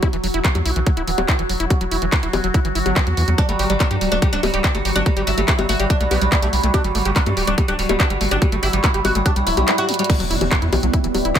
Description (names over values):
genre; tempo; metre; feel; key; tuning
psychedelic trance; 143 BPM; 4/4; straight; E minor; A4 = 440 Hz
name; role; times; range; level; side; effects
overtone-sweeping drone; sustained chords; 0.0-11.4 s; F#3 to G4; -25 LUFS; right 1 dB; chorus, built-in reverb, phaser, sidechain pumping
overdriven acid bass; riff; 0.0-11.4 s; E3 to G4; -26 LUFS; equal; distortion, auto-pan, sidechain pumping, tape echo
electronic kick drum; drums; 0.0-11.4 s; none; -18 LUFS; equal; none
garage drum kit; drums; 0.0-11.4 s; bongos, crash cymbal, handclaps, hi-hat; -23 LUFS; left 2 dB; none
round analog bass; bass; 0.1-11.3 s; D1 to G2; -22 LUFS; equal; none
oud; melody; 3.4-10.1 s; G3 to F#4; -22 LUFS; right 1 dB; phaser, sidechain pumping, dub echo
swell and impact; sound effects; 9.4-11.4 s; none; -27 LUFS; equal; none
warbly tape-like pad; texture; 10.3-11.4 s; B3 to B5; -26 LUFS; right 8 dB; chorus, built-in reverb, sidechain pumping
room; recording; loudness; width
little or no reverb; none; -16 LUFS; side -9 dB against mid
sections
0.0-10.1 A section; 10.1-11.4 B section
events
swell 9.4-10.1; kick drops out 9.7-10.1; drum fill 9.9; drop 10.1-11.4; impact 10.1-11.4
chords
0.0 E5; 3.4 G5; 10.1 E5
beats
| 0.03 0.45 0.86 1.28 | 1.70 2.12 2.54 2.96 | 3.38 3.80 4.22 4.64 | 5.06 5.48 5.90 6.32 | 6.74 7.16 7.58 8.00 | 8.42 8.84 9.26 9.68 | 10.10 10.52 10.94 11.36